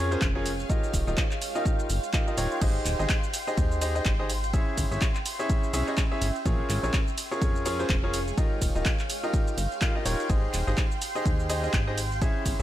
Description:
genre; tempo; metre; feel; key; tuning
piano house; 125 BPM; 4/4; swing 58% on 16ths; Ab major; A4 = 437 Hz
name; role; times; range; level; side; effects
bright concert grand piano; riff; 0.0-12.6 s; Db4 to F5; -31 LUFS; equal; sidechain pumping, tape echo
plucky analog bass; bass; 0.0-12.6 s; Eb1 to F2; -30 LUFS; equal; tube saturation, sidechain pumping
granular cloud pad; texture; 0.0-12.6 s; Ab4 to C6; -35 LUFS; right 1 dB; built-in reverb, sidechain pumping
punchy analog drum machine; drums; 0.1-12.6 s; crash cymbal, handclaps, hi-hat, ride cymbal, shaker; -33 LUFS; right 1 dB; none
electronic kick drum; drums; 0.2-12.6 s; none; -26 LUFS; equal; none
room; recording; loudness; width
digital ambience; none; -24 LUFS; side -13 dB against mid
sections
0.0-12.6 A section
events
none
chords
0.0 Bbm7; 0.7 Ebadd9; 2.6 Abmaj7; 4.3 Dbm/Ab; 6.5 Bbm7; 8.4 Ebadd9; 10.3 Abmaj7; 12.0 Dbm/Ab

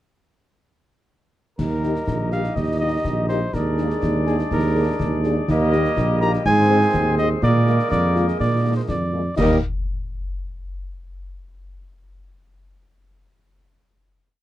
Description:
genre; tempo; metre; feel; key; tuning
military-style march for wind band; 123 BPM; 2/4; straight; Eb major; A4 = 441 Hz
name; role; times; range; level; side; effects
mellow cornet; melody; 1.6-9.6 s; Ab4 to Bb5; -24 LUFS; equal; none
warm woodwind section; second line; 1.6-9.6 s; G4 to Eb5; -28 LUFS; left 2 dB; none
clear trombone section; sustained chords; 1.6-9.6 s; G3 to Eb4; -27 LUFS; equal; none
mellow tuba; bass; 1.6-9.6 s; Bb1 to Bb2; -20 LUFS; right 2 dB; none
concert snare drum, clash cymbals and concert bass drum; drums; 1.6-9.6 s; none; -29 LUFS; left 2 dB; none
mellow French horn section; accompaniment; 1.8-9.6 s; G3 to Ab4; -25 LUFS; left 3 dB; none
room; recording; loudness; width
light reverb; dark, warm production; -18 LUFS; side -14 dB against mid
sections
1.6-9.4 A section; 9.4-10.3 final chord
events
none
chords
1.6 Eb; 3.5 Bb7/Eb; 5.5 Eb; 6.5 Ab; 7.4 Bb7; 9.4 Eb

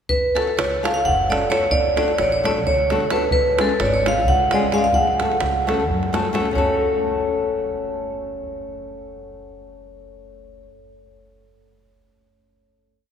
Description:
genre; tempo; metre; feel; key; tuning
balkan folk, Balkan wedding band; 259 BPM (eighths); 7/8; straight; F# harmonic minor; A4 = 440 Hz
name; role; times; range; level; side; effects
vibraphone with hard mallets; melody; 0.1-10.7 s; A4 to F#5; -21 LUFS; equal; none
upright bass; bass; 0.1-10.7 s; F#1 to F#2; -29 LUFS; equal; none
davul; percussion; 0.1-6.8 s; none; -26 LUFS; right 2 dB; none
nylon-string guitar; accompaniment; 0.3-10.7 s; G#3 to A4; -24 LUFS; left 3 dB; none
room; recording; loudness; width
wet cathedral reverb, RT60 4.8 s; recorded in a church or concert hall; -17 LUFS; side -8 dB against mid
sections
0.1-6.6 A section; 6.6-9.8 final chord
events
none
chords
0.1 F#m; 1.7 D; 3.3 C#; 4.9 F#m

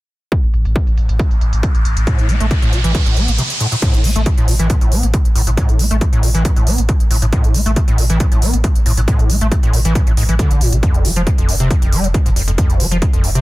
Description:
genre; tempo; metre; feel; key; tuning
driving peak-time techno; 137 BPM; 4/4; straight; A harmonic minor; A4 = 440 Hz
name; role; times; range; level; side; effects
electronic kick drum; drums; 0.3-13.1 s; none; -15 LUFS; equal; none
techno drum kit; drums; 0.3-13.4 s; crash cymbal, hi-hat; -24 LUFS; right 1 dB; sidechain pumping on hats, low-pass filter on hats, sidechain pumping on cymbals, low-pass filter on cymbals, low-pass filter on room
riser; sound effects; 1.1-3.8 s; none; -23 LUFS; right 1 dB; none
warm sub bass; bass; 0.4-13.4 s; F1 to A1; -17 LUFS; equal; tube saturation, sidechain pumping, low-pass filter
overdriven acid bass; riff; 2.1-13.4 s; F2 to C4; -19 LUFS; equal; analog chorus, sidechain pumping, dub echo
room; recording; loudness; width
light reverb; dense, heavily limited modern master; -12 LUFS; side -18 dB against mid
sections
0.3-3.8 A section; 3.8-13.4 B section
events
riser 1.1-3.8; break 3.4-3.8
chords
0.3 N.C.; 3.8 Am; 10.8 Fm

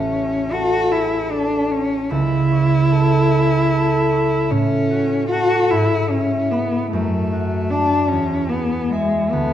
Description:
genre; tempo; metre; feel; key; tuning
classical, romantic duo for cello and harp; 50 BPM (dotted quarters); 6/8; rubato; A major; A4 = 440 Hz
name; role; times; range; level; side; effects
rich cello; melody; 0.0-9.5 s; G#3 to F#4; -19 LUFS; left 1 dB; none
concert harp; accompaniment; 0.0-9.5 s; A1 to B5; -18 LUFS; right 1 dB; none
room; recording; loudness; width
wet recital hall reverb, RT60 1.3 s; dark, warm production; -16 LUFS; side -10 dB against mid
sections
0.0-9.5 A section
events
none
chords
0.0 A; 2.1 A/C#; 4.5 F#m/A; 5.7 E/G#; 6.9 D/F#; 8.1 E6

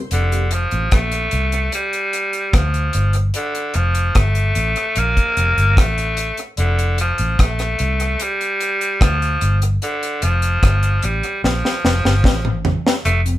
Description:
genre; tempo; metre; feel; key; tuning
lovers rock reggae; 74 BPM; 4/4; straight; F major; A4 = 440 Hz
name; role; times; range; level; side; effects
raspy tenor saxophone; melody; 0.1-13.2 s; D3 to Bb3; -20 LUFS; equal; none
vintage muted fingered electric bass; bass; 0.1-13.4 s; F1 to D2; -18 LUFS; equal; none
deep reggae drum kit; drums; 0.1-13.4 s; hi-hat, kick drum, rim click, snare drum, toms; -18 LUFS; equal; none
mellow tonewheel organ; accompaniment; 13.3-13.4 s; F2 to C3; -33 LUFS; left 4 dB; none
room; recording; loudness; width
moderate studio ambience, RT60 0.5 s; band playing live in one room; -15 LUFS; side -14 dB against mid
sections
0.1-13.4 A section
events
drum fill 11.4-13.0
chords
0.1 F; 1.7 G5; 3.4 F; 5.0 Bb5; 6.6 F; 8.2 G5; 9.8 F; 11.4 Bb5

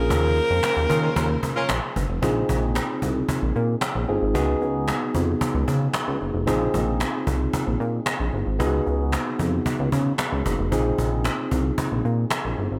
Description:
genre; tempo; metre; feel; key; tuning
early-eighties boogie funk; 113 BPM; 4/4; straight; unclear; A4 = 440 Hz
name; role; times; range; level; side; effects
breathy alto saxophone; melody; 0.0-2.0 s; Bb4; -26 LUFS; equal; none
barky tine electric piano; accompaniment; 0.0-12.8 s; Bb3 to Ab4; -29 LUFS; equal; overdrive, phaser
string machine, violins; sustained chords; 0.0-2.2 s; Db3 to C5; -40 LUFS; equal; none
chorused synth bass; bass; 0.0-12.8 s; F1 to Eb3; -26 LUFS; equal; none
cajon; drums; 0.1-12.4 s; none; -29 LUFS; equal; none
warm horn section; second line; 0.9-1.7 s; Db4 to Bb4; -30 LUFS; equal; none
room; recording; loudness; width
light reverb, small room ambience; none; -23 LUFS; mono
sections
0.0-2.2 A section; 2.2-12.8 B section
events
none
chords
0.0 Eb9sus4; 2.2 Bb9sus4; 4.3 Db9sus4; 6.5 Bb9sus4; 8.6 Db9sus4; 10.7 Bb9sus4

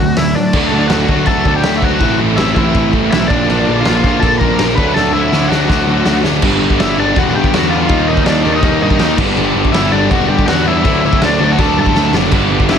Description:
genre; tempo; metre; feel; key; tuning
punk rock; 163 BPM; 4/4; straight; unclear; A4 = 441 Hz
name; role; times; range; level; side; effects
smooth overdriven lead guitar; melody; 0.0-12.8 s; D4 to B5; -17 LUFS; left 3 dB; none
distorted electric guitar; riff; 0.0-12.8 s; G2 to F#4; -18 LUFS; left 13 dB; distortion
sludgy distorted guitar; riff; 0.0-12.8 s; G2 to E4; -18 LUFS; right 14 dB; overdrive
fuzz picked electric bass; bass; 0.0-12.8 s; E1 to A2; -18 LUFS; equal; overdrive
raw garage drum kit; drums; 0.2-12.8 s; crash cymbal, hi-hat, kick drum, snare drum; -17 LUFS; equal; none
biting overdriven guitar; riff; 0.5-12.8 s; G2 to Eb4; -20 LUFS; right 1 dB; none
room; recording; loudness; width
light reverb; none; -10 LUFS; side -7 dB against mid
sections
0.5-6.4 A section; 6.4-12.8 B section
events
drum fill 5.0-6.4, 11.9-12.3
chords
0.0 D; 2.0 Am; 3.3 Bb; 4.8 D; 6.4 G; 7.9 Eb; 9.2 G; 10.8 D

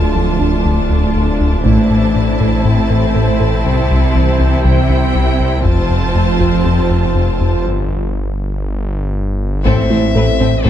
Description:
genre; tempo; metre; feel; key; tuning
cinematic, hybrid orchestral and electronic film score; 120 BPM; 4/4; straight; A minor; A4 = 439 Hz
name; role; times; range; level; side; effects
rich symphonic violin section; second line; 0.0-10.7 s; C4 to A5; -22 LUFS; left 2 dB; none
rich symphonic viola section; accompaniment; 0.0-10.7 s; C4 to F4; -21 LUFS; right 1 dB; none
rubbery square bass; riff; 0.0-10.7 s; C2 to A3; -16 LUFS; left 2 dB; none
detuned saw bass; bass; 0.0-10.7 s; D1 to C2; -18 LUFS; equal; none
rich symphonic cello section; bass; 0.0-10.7 s; D2 to C3; -20 LUFS; right 4 dB; none
harp-like synth pluck; arpeggios; 0.1-10.7 s; C3 to A4; -20 LUFS; right 2 dB; chorus, ping-pong delay
solo taiko drums; drums; 1.7-2.6, 5.7-6.6, 9.7-10.7 s; none; -21 LUFS; equal; none
clear symphonic violin section; melody; 9.6-10.7 s; A4 to C5; -25 LUFS; left 4 dB; none
rich violin; melody; 9.7-10.7 s; C5 to E5; -21 LUFS; left 8 dB; none
mellow French horn section; sustained chords; 9.7-10.7 s; C4 to C5; -20 LUFS; right 2 dB; none
rich symphonic double bass section; bass; 9.7-10.7 s; A1; -22 LUFS; right 3 dB; none
room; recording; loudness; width
moderate scoring stage reverb, RT60 1.6 s; dark, warm production; -12 LUFS; side -10 dB against mid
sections
0.0-9.7 A section; 9.7-10.7 B section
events
build-up 0.0-9.7; break 7.7-9.7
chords
0.0 Dm; 1.7 Am; 3.7 C; 5.7 F; 7.7 N.C.; 9.7 Am

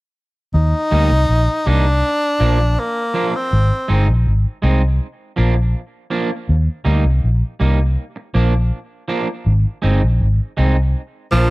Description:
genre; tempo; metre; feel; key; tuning
roots reggae; 81 BPM; 4/4; straight; Eb major; A4 = 440 Hz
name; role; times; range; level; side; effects
bright tenor saxophone; melody; 0.5-4.1, 11.3-11.5 s; F3 to Eb4; -18 LUFS; equal; tape echo
vintage muted fingered electric bass; bass; 0.5-11.5 s; G1 to Eb2; -14 LUFS; equal; tube saturation
electric guitar at the edge of break-up; accompaniment; 0.9-11.5 s; F3 to Eb4; -22 LUFS; right 3 dB; tape echo
room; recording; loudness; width
little or no reverb; dry, close 1970s-style studio recording; -15 LUFS; side -21 dB against mid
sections
0.5-11.5 A section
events
none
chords
0.5 Eb; 2.0 Bb; 3.5 Ab; 5.0 Bb; 6.5 Eb; 8.0 Bb; 9.5 Ab; 10.9 Bb

